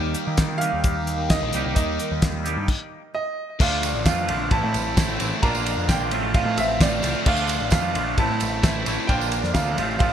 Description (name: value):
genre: indie rock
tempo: 131 BPM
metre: 4/4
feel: straight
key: unclear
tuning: A4 = 441 Hz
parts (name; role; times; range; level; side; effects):
- clear upright piano; melody; 0.0-10.1 s; D5 to Bb5; -28 LUFS; right 2 dB; ping-pong delay
- biting overdriven guitar; riff; 0.0-10.1 s; Eb3 to G4; -29 LUFS; left 10 dB; phaser
- twangy electric guitar; riff; 0.0-10.1 s; A2 to G4; -27 LUFS; right 8 dB; analog chorus, ping-pong delay
- growling picked electric bass; bass; 0.0-10.1 s; A1 to Eb3; -28 LUFS; equal; overdrive
- cloth-damped thuddy drum kit; drums; 0.1-10.1 s; crash cymbal, hi-hat, kick drum, ride cymbal, snare drum; -23 LUFS; equal; gated reverb
- tambourine; percussion; 3.8-10.1 s; none; -36 LUFS; right 15 dB; none
room: moderate plate reverb, RT60 1.6 s, small room ambience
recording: bright 1980s-style digital production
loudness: -20 LUFS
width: side -9 dB against mid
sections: 0.0-3.6 A section; 3.6-10.1 B section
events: stop 2.7-3.6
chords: 0.0 Eb; 3.6 Dm; 4.5 Am; 5.4 Bb; 6.1 F/A; 7.3 Dm; 8.2 Am; 9.1 Bb